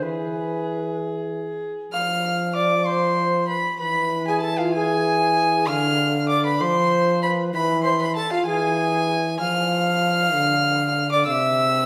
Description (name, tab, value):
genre	classical, renaissance-style consort dance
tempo	64 BPM (dotted quarters)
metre	6/8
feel	straight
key	unclear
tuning	A4 = 440 Hz
part	mellow alto recorder	melody	0.0-11.9 s	F4 to F5	-28 LUFS	equal	none
part	warm violin	second line	0.0-11.9 s	G#4 to F6	-25 LUFS	equal	none
part	mellow trombone	bass	0.0-11.9 s	C3 to F3	-27 LUFS	equal	none
room	wet recital hall reverb, RT60 1.5 s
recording	recorded in a church or concert hall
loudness	-22 LUFS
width	mono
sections	0.0-1.9 A section; 1.9-11.9 A section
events	none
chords	0.0 E; 1.9 F5; 3.8 E; 5.7 Dm; 7.5 E; 9.4 Dm; 11.3 C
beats	| 0.02 0.97 | 1.93 2.86 | 3.79 4.73 | 5.67 6.60 | 7.53 8.46 | 9.40 10.34 | 11.27